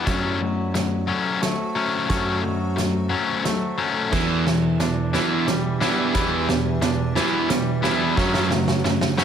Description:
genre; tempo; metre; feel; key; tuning
post-rock; 89 BPM; 3/4; straight; unclear; A4 = 440 Hz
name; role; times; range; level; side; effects
icy glass pad; sustained chords; 0.0-9.2 s; D4 to F#5; -35 LUFS; right 1 dB; chorus, built-in reverb
twangy electric guitar; arpeggios; 0.0-9.2 s; E2 to D4; -29 LUFS; left 1 dB; digital delay
cranked stack guitar; riff; 0.0-9.2 s; E3 to E4; -24 LUFS; left 5 dB; overdrive
growling fingered electric bass; bass; 0.1-9.2 s; E2 to F#2; -26 LUFS; right 1 dB; overdrive
loose indie drum kit; drums; 0.1-9.2 s; crash cymbal, hi-hat, kick drum, snare drum; -26 LUFS; right 1 dB; none
distorted electric guitar; riff; 4.1-9.2 s; E2 to F#3; -24 LUFS; right 11 dB; distortion
room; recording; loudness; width
light reverb; none; -19 LUFS; side -8 dB against mid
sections
0.0-9.2 A section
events
build-up 0.0-9.2; drum fill 0.0-9.2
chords
0.1 F#m7b5; 4.1 Em7; 8.2 F#m7b5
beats
| 0.07 0.75 1.43 | 2.10 2.78 3.45 | 4.13 4.80 5.48 | 6.15 6.83 7.50 | 8.18 8.85

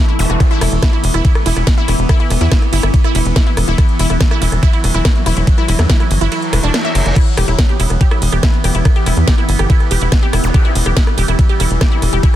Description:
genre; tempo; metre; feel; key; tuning
psychedelic trance; 142 BPM; 4/4; straight; E minor; A4 = 437 Hz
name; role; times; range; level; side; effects
overtone-sweeping drone; sustained chords; 0.0-12.4 s; E3 to B3; -21 LUFS; equal; chorus, built-in reverb, sidechain pumping
wide unison pluck; riff; 0.0-12.3 s; D4 to E5; -22 LUFS; moving between left 6 dB and right 7 dB; auto-pan, sidechain pumping, tape echo
drum and bass drum kit; drums; 0.1-12.4 s; crash cymbal, hi-hat, ride cymbal, rim click, snare drum; -21 LUFS; equal; soft clipping on snare
tight sequencer bass; bass; 0.2-12.2 s; E1 to E2; -15 LUFS; equal; none
zap and reverse cymbal; sound effects; 0.2-0.3, 6.5-7.2, 10.4-10.5 s; none; -25 LUFS; right 1 dB; none
electronic kick drum; drums; 0.4-12.3 s; none; -12 LUFS; equal; overdrive
room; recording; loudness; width
digital ambience; dense, heavily limited modern master, faint mains hum; -11 LUFS; side -12 dB against mid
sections
0.0-12.4 A section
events
break 6.3-7.2; reverse cymbal 6.5-7.2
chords
0.0 E5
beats
| 0.40 0.82 1.25 1.67 | 2.09 2.52 2.94 3.36 | 3.78 4.21 4.63 5.05 | 5.47 5.89 6.32 6.74 | 7.16 7.58 8.01 8.43 | 8.85 9.28 9.70 10.12 | 10.54 10.96 11.39 11.81 | 12.23

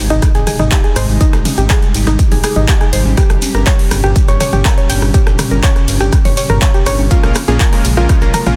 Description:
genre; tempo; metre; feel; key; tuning
progressive house; 122 BPM; 4/4; straight; unclear; A4 = 440 Hz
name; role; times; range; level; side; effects
airy breathy pad; sustained chords; 0.0-8.6 s; Bb2 to G4; -24 LUFS; equal; chorus, sidechain pumping
dark detuned saw bass; bass; 0.0-8.6 s; G1 to Bb1; -17 LUFS; equal; sidechain pumping
sub drop; sound effects; 0.2-1.2 s; none; barely audible; none; none
soft round pluck; arpeggios; 0.1-8.5 s; Eb4 to G6; -21 LUFS; equal; chorus, sidechain pumping, delay
big-room dance drum kit; drums; 0.1-8.6 s; handclaps, hi-hat, ride cymbal, rim click; -23 LUFS; equal; none
shekere; percussion; 0.1-8.6 s; none; -31 LUFS; equal; none
dusty soul sampler-style drum kit; drums; 0.2-8.5 s; hi-hat, shaker, snare drum; -33 LUFS; equal; none
electronic kick drum; drums; 0.2-8.2 s; none; -14 LUFS; equal; none
punchy analog drum machine; percussion; 0.2-8.6 s; congas, rim click, toms; -24 LUFS; equal; soft clipping on snare, sidechain pumping on snare, sidechain pumping on perc, sidechain pumping on toms
supersaw stab; stabs; 7.1-8.6 s; Ab3 to Db5; -21 LUFS; equal; sidechain pumping, delay
room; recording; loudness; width
digital ambience; dense, heavily limited modern master; -12 LUFS; mono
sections
0.0-8.6 A section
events
impact 0.0-1.2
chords
0.0 Abmaj7; 3.2 Gdim; 7.1 Bbm7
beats
0.22 0.72 | 1.21 1.70 2.19 2.68 | 3.17 3.67 4.16 4.65 | 5.14 5.63 6.13 6.62 | 7.11 7.60 8.09

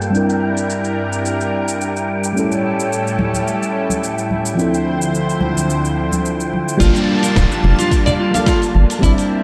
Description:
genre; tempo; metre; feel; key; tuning
sunset chillout; 108 BPM; 4/4; swing 53% on 16ths; G dorian; A4 = 440 Hz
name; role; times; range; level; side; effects
mellow FM electric piano; accompaniment; 0.0-9.4 s; F3 to A5; -23 LUFS; equal; chorus, digital delay
lush unison pad; sustained chords; 0.0-9.4 s; D2 to A5; -23 LUFS; equal; chorus
dusty soul sampler-style drum kit; drums; 0.0-9.3 s; hi-hat, shaker, snare drum; -27 LUFS; equal; low-pass filter on perc, low-pass filter on snare, low-pass filter on toms, low-pass filter on cymbals, low-pass filter on hats, low-pass filter on room
wind-like tuned noise texture; texture; 0.0-9.4 s; G5 to A5; -30 LUFS; equal; built-in reverb
congas; percussion; 3.2-8.9 s; none; -26 LUFS; equal; none
clean electric guitar; arpeggios; 6.8-9.1 s; E4 to F5; -24 LUFS; equal; digital delay
round analog bass; bass; 6.8-9.1 s; D1 to G1; -15 LUFS; equal; none
electronic kick drum; drums; 6.8-9.1 s; none; -20 LUFS; equal; none
downlifter; sound effects; 6.8-9.4 s; none; -29 LUFS; equal; none
room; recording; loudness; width
moderate lush hall reverb, RT60 1.9 s; dark, warm production; -17 LUFS; mono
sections
0.0-6.8 A section; 6.8-9.4 B section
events
none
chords
0.1 C7/G; 2.4 A7; 4.6 Dm7; 6.8 Gm7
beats
| 0.14 0.69 1.25 1.80 | 2.36 2.91 3.47 4.03 | 4.58 5.14 5.69 6.25 | 6.80 7.36 7.91 8.47 | 9.03

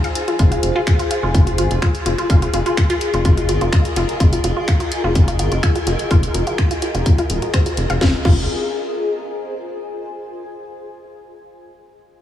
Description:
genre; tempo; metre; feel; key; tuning
minimal techno; 126 BPM; 4/4; straight; F minor; A4 = 440 Hz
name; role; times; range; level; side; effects
resonant blip pluck; riff; 0.0-8.5 s; F4 to F5; -23 LUFS; equal; chorus, sidechain pumping, diffuse ambient delay
garage drum kit; drums; 0.0-8.3 s; crash cymbal, finger snaps, hi-hat, snare drum; -26 LUFS; left 1 dB; none
granular cloud pad; texture; 0.0-9.9 s; F4 to Ab5; -24 LUFS; left 2 dB; built-in reverb, ensemble chorus, sidechain pumping
rubbery square bass; bass; 0.4-8.5 s; Eb1 to Ab1; -20 LUFS; equal; sidechain pumping
electronic kick drum; drums; 0.4-8.3 s; none; -14 LUFS; equal; none
room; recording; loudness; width
light reverb, digital ambience; small room ambience; -15 LUFS; side -11 dB against mid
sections
0.0-8.0 A section; 8.0-9.9 B section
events
filter sweep on synth pluck 0.0-8.0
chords
0.0 Fm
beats
| 0.39 0.87 1.34 1.82 | 2.30 2.77 3.25 3.73 | 4.20 4.68 5.15 5.63 | 6.11 6.58 7.06 7.54 | 8.01 8.49 8.96 9.44

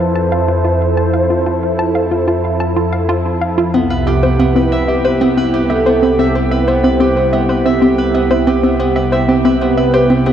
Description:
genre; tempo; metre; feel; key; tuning
ambient, sequencer-driven space music; 92 BPM; 4/4; straight; C major; A4 = 440 Hz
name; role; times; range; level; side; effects
mellow horn-like synth lead; melody; 0.0-10.3 s; G4 to C5; -19 LUFS; right 1 dB; ensemble chorus, tape echo
sweeping resonant pad; sustained chords; 0.0-10.3 s; C2 to A4; -16 LUFS; right 1 dB; chorus, phaser
hollow square pluck; riff; 0.2-10.3 s; C4 to A5; -16 LUFS; equal; chorus, vintage 12-bit sampler grit, tape echo
Celtic harp; arpeggios; 3.7-10.3 s; B3 to E5; -17 LUFS; equal; auto-pan, tape echo
room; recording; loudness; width
wet huge ambient reverb, RT60 7.7 s; worn, warbling old tape, cassette tape, warbly pitch drift; -11 LUFS; side -9 dB against mid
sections
0.0-10.3 A section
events
none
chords
0.0 Fmaj7; 3.7 Cmaj7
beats
0.48 | 1.14 1.79 2.44 3.09 | 3.74 4.39 5.05 5.70 | 6.35 7.00 7.66 8.31 | 8.96 9.61 10.27

